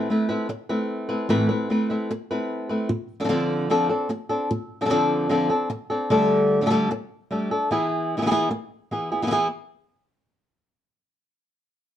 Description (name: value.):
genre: flamenco.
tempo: 150 BPM.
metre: 4/4.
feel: straight.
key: E phrygian dominant.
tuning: A4 = 435 Hz.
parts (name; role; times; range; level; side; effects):
flamenco guitar; solo; 0.0-9.5 s; A2 to B4; -21 LUFS; equal; none.
room: light reverb.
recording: dark, warm production.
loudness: -21 LUFS.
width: side -11 dB against mid.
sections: 0.0-9.3 A section; 9.3-10.9 B section.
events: none.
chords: 0.0 Amadd9; 2.9 Dm7; 6.1 Gsus2/D; 7.7 E.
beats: 0.10 0.50 0.90 | 1.30 1.70 2.10 2.50 | 2.90 3.30 3.70 4.10 | 4.50 4.91 5.31 5.71 | 6.11 6.51 6.91 7.31 | 7.71 8.11 8.51 8.90 | 9.30.